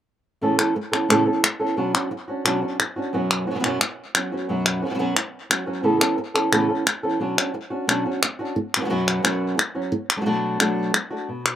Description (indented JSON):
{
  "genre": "flamenco",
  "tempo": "177 BPM",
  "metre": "4/4",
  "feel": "straight",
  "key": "B minor",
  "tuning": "A4 = 440 Hz",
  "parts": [
    { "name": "flamenco guitar", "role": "melody", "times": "0.4-11.6 s", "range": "F#2 to A4", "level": "-22 LUFS", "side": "right 1 dB", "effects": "none" },
    { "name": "palmas hand claps", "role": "percussion", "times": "0.6-11.6 s", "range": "none", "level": "-21 LUFS", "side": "left 2 dB", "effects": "none" }
  ],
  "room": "light reverb",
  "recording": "recorded outdoors, with no room sound",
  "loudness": "-20 LUFS",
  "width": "side -11 dB against mid",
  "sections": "0.4-11.3 A section",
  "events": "none",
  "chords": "0.4 Aadd9; 1.8 Bmadd9; 3.1 F#sus4; 5.8 Aadd9; 7.2 Bmadd9; 8.6 F#sus4; 9.9 Bm7",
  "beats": "| 0.42 0.76 1.10 1.44 | 1.77 2.11 2.45 2.79 | 3.13 3.47 3.81 4.14 | 4.49 4.82 5.16 5.50 | 5.84 6.18 6.52 6.86 | 7.20 7.54 7.88 8.22 | 8.56 8.90 9.24 9.58 | 9.92 10.27 10.61 10.95 | 11.29"
}